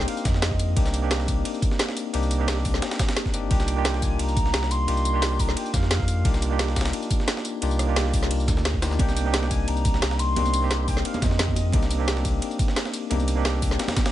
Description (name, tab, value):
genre	liquid drum and bass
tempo	175 BPM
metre	4/4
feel	straight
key	C minor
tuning	A4 = 440 Hz
part	concert flute	melody	0.0-1.3, 3.5-6.7, 9.0-12.3 s	Eb5 to C6	-32 LUFS	equal	digital delay
part	bell-like tine electric piano	accompaniment	0.0-14.1 s	Bb3 to G4	-29 LUFS	moving between left 4 dB and right 3 dB	auto-pan, tape echo
part	warm sub bass	bass	0.0-13.8 s	G1 to F2	-25 LUFS	equal	none
part	garage drum kit	drums	0.0-14.0 s	hi-hat, rim click, snare drum, tambourine	-29 LUFS	equal	none
part	breakbeat sampler-style drum kit	drums	0.1-14.1 s	ride cymbal, snare drum	-33 LUFS	equal	high-pass filter on cymbals, high-pass filter on snare
part	electronic kick drum	drums	0.3-14.0 s	none	-25 LUFS	equal	none
part	congas and bongos	percussion	9.0-14.0 s	none	-32 LUFS	right 4 dB	none
room	little or no reverb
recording	nothing above 11.0 kHz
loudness	-21 LUFS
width	side -13 dB against mid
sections	0.0-14.1 A section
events	none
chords	0.0 Cm9; 3.5 Ebmaj9/C